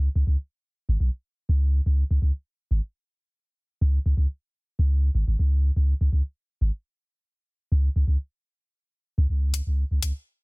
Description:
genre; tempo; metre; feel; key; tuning
minimal techno; 123 BPM; 4/4; straight; unclear; A4 = 440 Hz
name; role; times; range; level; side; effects
punchy sub bass; bass; 0.0-10.1 s; G#1 to C#2; -20 LUFS; equal; none
electronic hi-hat; drums; 9.5-10.1 s; none; -30 LUFS; left 9 dB; overdrive, high-pass filter on hats
room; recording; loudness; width
little or no reverb; dense, heavily limited modern master; -22 LUFS; side -33 dB against mid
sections
0.0-9.3 A section; 9.3-10.4 B section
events
build-up 9.3-10.4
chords
none

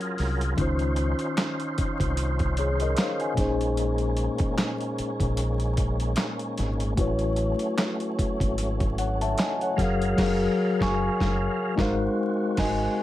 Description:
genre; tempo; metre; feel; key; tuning
R&B, neo-soul; 75 BPM; 4/4; swing 57% on 16ths; Db major; A4 = 440 Hz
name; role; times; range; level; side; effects
mellow tine electric piano; accompaniment; 0.0-13.0 s; Bb2 to Db6; -27 LUFS; left 2 dB; medium stereo tremolo, plate reverb
tonewheel organ; sustained chords; 0.0-13.0 s; F#3 to F5; -33 LUFS; right 1 dB; overdrive, chorus vibrato, fast rotary speaker, plate reverb
dusty soul sampler-style drum kit; drums; 0.0-12.8 s; crash cymbal, handclaps, hi-hat, kick drum, snare drum; -28 LUFS; equal; overdrive
deep dub fingered electric bass; bass; 0.2-12.9 s; Gb1 to Db2; -27 LUFS; equal; none
room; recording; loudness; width
moderate studio reverb, RT60 0.6 s; vinyl crackle; -23 LUFS; side -14 dB against mid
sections
0.0-13.0 A section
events
band accent 10.2-13.0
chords
0.0 Gbmaj9; 0.6 Dbmaj9; 3.4 Bbm11; 7.0 A69; 9.8 Gbmaj9; 11.8 Ab13

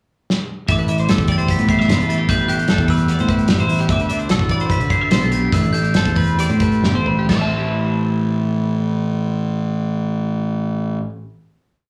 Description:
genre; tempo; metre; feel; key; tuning
math rock and midwest emo; 128-150 BPM; 4/4; straight; A dorian; A4 = 436 Hz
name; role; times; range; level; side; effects
loose indie drum kit; drums; 0.3-7.4 s; crash cymbal, hi-hat, kick drum, snare drum, toms; -23 LUFS; equal; none
glockenspiel with hard plastic mallets; melody; 0.7-11.0 s; D6 to C7; -27 LUFS; equal; slapback echo
twelve-string electric guitar; accompaniment; 0.7-11.4 s; A2 to B4; -26 LUFS; equal; slapback echo
twelve-string electric guitar; arpeggios; 0.7-11.1 s; G4 to A5; -28 LUFS; equal; slapback echo
fuzz fingered electric bass; bass; 0.7-11.0 s; G1 to D3; -21 LUFS; equal; overdrive
room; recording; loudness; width
little or no reverb; live gig heard through the venue's PA, club reverb, studio ambience; -18 LUFS; mono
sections
0.0-0.7 pickup bar; 0.7-7.3 A section; 7.3-11.1 final chord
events
drum fill 0.3-0.7, 6.8-7.3; slowing down 3.9-7.3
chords
0.0 N.C.; 0.7 Am9; 3.9 D13; 5.5 Am11; 7.3 Am9

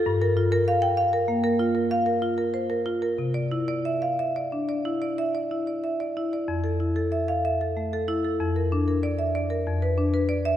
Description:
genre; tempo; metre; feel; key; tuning
classical, contemporary piece for solo marimba; 94 BPM; 5/4; uneven beats, rubato; unclear; A4 = 440 Hz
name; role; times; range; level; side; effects
marimba with medium hard mallets; solo; 0.0-10.6 s; F2 to G5; -23 LUFS; equal; none
room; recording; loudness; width
wet church reverb, RT60 3.2 s; none; -23 LUFS; side -11 dB against mid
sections
0.0-10.6 A section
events
none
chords
0.1 Gm7; 3.2 Cadd9; 6.5 Fmaj7; 8.4 Bb/F; 9.7 Dm6/F

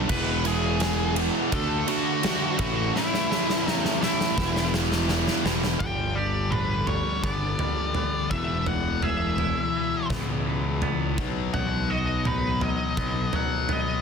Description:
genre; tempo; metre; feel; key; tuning
quiet-loud alternative rock; 84 BPM; 4/4; straight; E mixolydian; A4 = 443 Hz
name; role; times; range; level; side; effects
high-gain distorted guitar; riff; 0.0-5.8 s; E2 to D4; -31 LUFS; right 1 dB; distortion
overdriven semi-hollow guitar; riff; 0.0-5.8 s; A2 to F#4; -30 LUFS; right 13 dB; none
thick fuzz guitar; riff; 0.0-14.0 s; E2 to D4; -30 LUFS; left 12 dB; distortion
fuzz picked electric bass; bass; 0.0-13.3 s; E1 to D2; -29 LUFS; right 1 dB; overdrive
octave-fuzz lead guitar; melody; 0.1-14.0 s; E4 to B5; -30 LUFS; left 1 dB; distortion
big rock drum kit; drums; 0.1-13.9 s; crash cymbal, kick drum, ride cymbal, snare drum, toms; -29 LUFS; right 1 dB; none
twangy electric guitar; arpeggios; 5.8-14.0 s; E2 to G#4; -34 LUFS; right 6 dB; spring reverb
room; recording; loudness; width
light reverb, small room ambience; dense, heavily limited modern master; -23 LUFS; side -6 dB against mid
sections
0.0-5.8 A section; 5.8-14.0 B section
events
drum fill 3.0-5.8; half time 5.8-14.0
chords
0.1 E; 1.5 D; 2.6 A; 4.4 E; 5.8 G; 8.3 E; 11.2 B

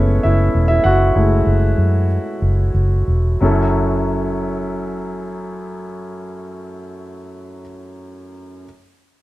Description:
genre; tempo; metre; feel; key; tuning
piano-driven pop; 88-101 BPM; 4/4; straight; F# minor; A4 = 440 Hz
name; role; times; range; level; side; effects
clear concert grand piano; accompaniment; 0.0-8.7 s; F#2 to F#5; -20 LUFS; equal; plate reverb
vintage muted fingered electric bass; bass; 0.0-7.6 s; E1 to F#2; -16 LUFS; equal; none
room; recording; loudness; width
light reverb; dark, warm production; -14 LUFS; side -17 dB against mid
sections
0.0-3.4 A section; 3.4-6.1 B section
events
slowing down 0.0-3.4; grand piano solo 0.0-3.4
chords
0.0 F#m7

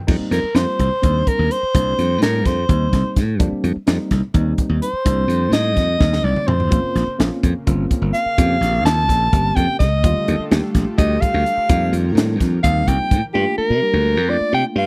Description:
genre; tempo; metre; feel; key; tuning
electric jazz fusion; 253 BPM (eighths); 7/8; straight; F mixolydian; A4 = 439 Hz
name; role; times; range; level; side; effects
tine electric piano; accompaniment; 0.0-14.8 s; D3 to G4; -28 LUFS; equal; none
slap bass; bass; 0.1-14.9 s; G1 to C3; -21 LUFS; equal; none
crisp fusion drum kit; drums; 0.1-13.2 s; crash cymbal, hi-hat, kick drum, snare drum, toms; -21 LUFS; equal; none
breathy soprano saxophone; melody; 0.3-14.9 s; G4 to A5; -22 LUFS; equal; slapback echo
lush unison pad; sustained chords; 6.7-13.3 s; Db3 to Bb4; -34 LUFS; equal; none
room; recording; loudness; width
little or no reverb; none; -18 LUFS; mono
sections
0.1-13.4 A section; 13.4-14.9 B section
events
soprano saxophone solo 0.1-13.4; drum fill 6.0-6.7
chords
0.1 F9sus4; 6.7 Bbmadd9; 10.0 Ebmaj9#11; 11.7 F9sus4; 13.4 Gm9

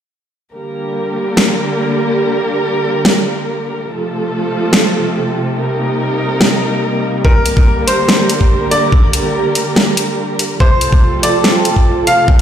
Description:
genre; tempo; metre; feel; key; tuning
heavy wobble dubstep; 143 BPM; 4/4; swing 54% on 16ths, half-time; G minor; A4 = 439 Hz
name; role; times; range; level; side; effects
dark chamber string section; sustained chords; 0.5-12.4 s; C3 to Bb4; -16 LUFS; right 1 dB; sidechain pumping
warbly tape-like pad; texture; 2.4-12.4 s; C4 to Bb5; -23 LUFS; right 2 dB; chorus, built-in reverb, sidechain pumping
dubstep drum kit; drums; 1.4-12.4 s; hi-hat, snare drum; -14 LUFS; equal; none
bright baby grand piano; melody; 7.2-12.4 s; Bb4 to F5; -16 LUFS; equal; ping-pong delay
electronic kick drum; drums; 7.2-12.4 s; none; -10 LUFS; equal; none
room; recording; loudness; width
light reverb, studio ambience; played on a big sound system in a bare room, stone room reverb; -11 LUFS; side -9 dB against mid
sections
0.5-12.4 A section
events
fade-in on ambient pad 0.5-12.4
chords
0.5 Gm; 3.9 F; 5.6 Cm7; 7.2 Gm; 10.6 F

